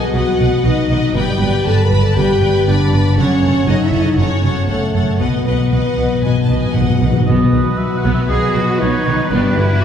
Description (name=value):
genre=cinematic, heroic adventure film score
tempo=118 BPM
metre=4/4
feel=straight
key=B mixolydian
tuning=A4 = 439 Hz
part: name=warm symphonic violin section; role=melody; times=0.0-9.8 s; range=A4 to B5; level=-27 LUFS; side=left 3 dB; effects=none
part: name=warm symphonic violin section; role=second line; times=0.0-9.8 s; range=F#4 to B5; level=-28 LUFS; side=left 2 dB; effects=none
part: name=rich symphonic viola section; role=accompaniment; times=0.0-9.6 s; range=D3 to D#5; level=-24 LUFS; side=equal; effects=none
part: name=mellow French horn section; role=sustained chords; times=0.0-9.8 s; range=F#3 to B4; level=-19 LUFS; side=left 2 dB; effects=none
part: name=concert harp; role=arpeggios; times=0.0-9.8 s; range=F#2 to D#4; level=-21 LUFS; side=left 4 dB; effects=none
part: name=rich studio double bass section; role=bass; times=0.1-9.7 s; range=F#1 to B1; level=-18 LUFS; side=right 2 dB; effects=none
part: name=rich symphonic cello section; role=bass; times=0.1-9.8 s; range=F#2 to G#4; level=-20 LUFS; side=right 1 dB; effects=none
part: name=timpani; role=percussion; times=5.2-8.0 s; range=B2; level=-18 LUFS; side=equal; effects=none
part: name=warm oboe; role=second line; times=7.3-9.8 s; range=B4 to F#5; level=-22 LUFS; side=right 2 dB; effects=none
part: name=warm trumpet section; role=stabs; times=7.3-9.8 s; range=B4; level=-25 LUFS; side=right 2 dB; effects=none
room=wet scoring stage reverb, RT60 1.5 s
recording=heard from further back in the room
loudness=-12 LUFS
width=side -8 dB against mid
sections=0.0-7.3 A section; 7.3-9.8 A section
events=timpani fill 5.2-7.3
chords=0.0 B; 1.2 G; 3.2 F#m; 5.2 B; 9.3 G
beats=0.14 0.65 | 1.16 1.67 2.17 2.67 | 3.17 3.67 4.17 4.68 | 5.20 5.72 6.24 6.75 | 7.27 7.79 8.30 8.81 | 9.31 9.82